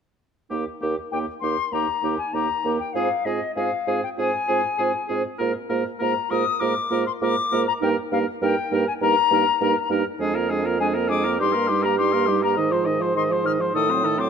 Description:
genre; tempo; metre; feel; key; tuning
quick classical-period movement for wind quintet; 100 BPM; 4/4; rubato; Eb major; A4 = 443 Hz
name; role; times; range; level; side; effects
warm oboe; second line; 0.5-14.3 s; G4 to Eb5; -28 LUFS; left 2 dB; none
dark clarinet; accompaniment; 0.5-14.3 s; C4 to G4; -29 LUFS; right 11 dB; none
warm French horn; accompaniment; 0.5-14.3 s; Eb3 to C4; -29 LUFS; right 2 dB; none
dark bassoon; bass; 0.5-14.3 s; Eb2 to A2; -26 LUFS; right 2 dB; none
silver concert flute; melody; 1.1-14.3 s; Eb5 to F6; -24 LUFS; left 8 dB; none
room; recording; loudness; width
moderate concert hall reverb, RT60 2.0 s; close, detailed microphones; -20 LUFS; side -6 dB against mid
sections
0.5-14.3 A section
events
none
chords
0.5 Eb; 3.0 Fm/Ab; 5.4 Bb5/Ab; 7.8 Eb/G; 10.2 Bb7/F; 11.4 Eb/G; 12.6 Fm7/Ab; 13.7 Adim7

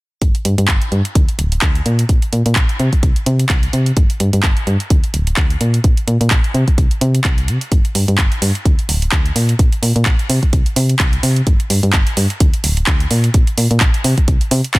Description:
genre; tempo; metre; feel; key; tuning
piano house; 128 BPM; 4/4; swing 56% on 16ths; G minor; A4 = 440 Hz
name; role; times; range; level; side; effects
solid FM bass; bass; 0.2-14.8 s; D1 to C3; -16 LUFS; equal; sidechain pumping
electronic kick drum; drums; 0.2-14.8 s; none; -14 LUFS; equal; none
house drum kit; drums; 0.2-14.8 s; handclaps, hi-hat; -20 LUFS; right 1 dB; none
room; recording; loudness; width
digital ambience; dense, heavily limited modern master; -12 LUFS; side -21 dB against mid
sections
0.2-14.8 A section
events
none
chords
none

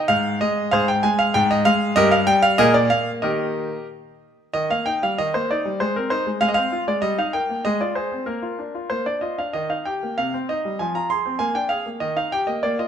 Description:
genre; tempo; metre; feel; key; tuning
classical-period piano sonatina; 96 BPM; 2/4; rubato; Eb major; A4 = 440 Hz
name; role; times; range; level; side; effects
bright concert grand piano; solo; 0.0-12.9 s; G2 to C6; -19 LUFS; equal; none
room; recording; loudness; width
moderate recital hall reverb, RT60 1.6 s; close, detailed microphones; -19 LUFS; side -8 dB against mid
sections
0.0-4.5 A section; 4.5-12.9 A section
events
none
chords
0.1 N.C.; 0.7 Ab6; 1.4 N.C.; 2.0 Gm7; 2.6 Bb5; 3.2 Eb; 5.8 Ab; 6.4 Fm/Ab; 7.0 Eb/G; 7.6 Fm/Ab; 8.3 Bb; 9.5 Eb; 10.2 Cm; 10.8 Fm; 11.4 Bb7; 12.0 Eb

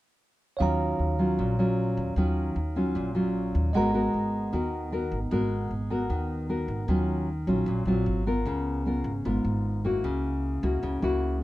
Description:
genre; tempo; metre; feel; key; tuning
bossa nova; 153 BPM; 4/4; straight; Eb minor; A4 = 439 Hz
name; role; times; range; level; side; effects
bell-like tine electric piano; accompaniment; 0.6-6.9 s; Gb4 to Bb5; -34 LUFS; right 4 dB; none
nylon-string guitar; accompaniment; 0.6-11.4 s; Ab2 to Bb4; -27 LUFS; equal; none
upright bass; bass; 0.6-11.4 s; Ab1 to Eb2; -30 LUFS; equal; none
room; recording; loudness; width
light reverb; dark, warm production; -25 LUFS; side -16 dB against mid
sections
0.6-6.9 A section; 6.9-11.4 B section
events
none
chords
0.6 Ebm9; 3.7 Abm9; 6.9 Ebm9; 8.1 Ab13; 8.5 Db6; 10.0 Gb7/Db

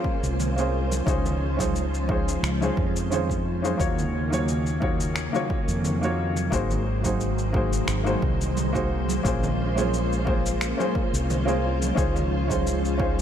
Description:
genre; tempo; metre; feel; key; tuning
sunset chillout; 88 BPM; 4/4; swing 54% on 16ths; Eb dorian; A4 = 439 Hz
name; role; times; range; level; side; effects
dark baby grand piano; accompaniment; 0.0-13.2 s; Bb3 to Db5; -28 LUFS; moving between left 5 dB and right 5 dB; auto-pan, low-pass filter, ping-pong delay
soft string machine; sustained chords; 0.0-13.2 s; Db3 to C5; -29 LUFS; equal; ensemble chorus
electronic kick drum; drums; 0.0-13.1 s; none; -28 LUFS; equal; overdrive
mellow fretless electric bass; bass; 0.2-13.2 s; Ab1 to F2; -27 LUFS; equal; none
electronic cabasa and finger snaps; drums; 0.2-13.2 s; none; -33 LUFS; left 2 dB; overdrive
congas; percussion; 0.4-12.6 s; none; -34 LUFS; right 4 dB; none
room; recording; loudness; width
light reverb; none; -22 LUFS; side -9 dB against mid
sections
0.0-13.2 A section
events
none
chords
0.0 Bbm9; 1.1 Dbmaj7; 3.8 Ebm7; 6.5 Ab7; 9.2 Bbm9; 12.0 Dbmaj7

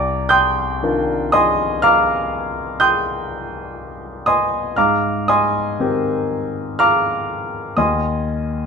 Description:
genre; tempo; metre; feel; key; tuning
classical, impressionist solo piano; 60 BPM; 5/4; rubato; unclear; A4 = 437 Hz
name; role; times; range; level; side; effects
clear concert grand piano; solo; 0.0-8.7 s; C2 to G6; -16 LUFS; equal; none
room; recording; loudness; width
moderate large studio reverb, RT60 1.3 s; minimal, uncompressed stereo recording; -16 LUFS; side -5 dB against mid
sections
0.0-8.7 A section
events
none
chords
0.0 Cm11; 4.8 Abmaj9; 7.8 N.C.

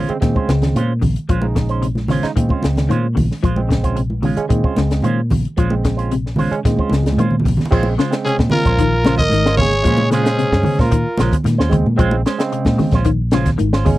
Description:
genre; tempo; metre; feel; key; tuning
afrobeat; 112 BPM; 4/4; straight; Bb minor; A4 = 440 Hz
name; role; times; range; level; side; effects
semi-hollow electric guitar; arpeggios; 0.0-14.0 s; C3 to F3; -23 LUFS; left 5 dB; ensemble chorus
electric guitar with an envelope filter; stabs; 0.0-13.9 s; Ab3 to C5; -23 LUFS; right 6 dB; harmonic tremolo
vintage muted fingered electric bass; bass; 0.0-14.0 s; Ab1 to Bb2; -18 LUFS; equal; none
barky tine electric piano; accompaniment; 0.1-14.0 s; Db3 to C5; -23 LUFS; right 4 dB; none
compact cocktail drum kit; drums; 0.1-14.0 s; crash cymbal, hi-hat, kick drum, snare drum; -19 LUFS; equal; none
congas; percussion; 0.4-14.0 s; none; -22 LUFS; right 1 dB; none
growling trumpet; melody; 8.2-11.3 s; Ab4 to Eb5; -19 LUFS; equal; none
breathy alto saxophone; second line; 8.3-11.3 s; Db4 to Bb4; -23 LUFS; right 3 dB; none
room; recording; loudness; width
little or no reverb; dry, close 1970s-style studio recording; -14 LUFS; side -16 dB against mid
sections
0.0-7.7 A section; 7.7-14.0 B section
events
drum fill 7.0-7.7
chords
0.0 Bbm9

